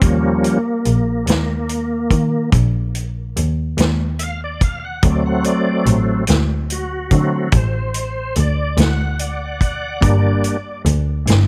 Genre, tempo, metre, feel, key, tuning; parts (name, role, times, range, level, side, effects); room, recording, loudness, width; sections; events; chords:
slow blues; 48 BPM (dotted quarters); 12/8; straight; A4 = 440 Hz
bright tonewheel organ; sustained chords; 0.0-10.8 s; F3 to F#5; -22 LUFS; equal; chorus vibrato, slow rotary speaker
rich double bass; bass; 0.0-11.5 s; G1 to Eb3; -20 LUFS; equal
vintage drum kit; drums; 0.0-11.5 s; hi-hat, kick drum, snare drum; -21 LUFS; equal
little or no reverb; -18 LUFS; mono
0.0-11.5 A section
tonewheel organ solo 0.0-11.5
0.0 Eb5; 5.0 D7; 10.0 Gm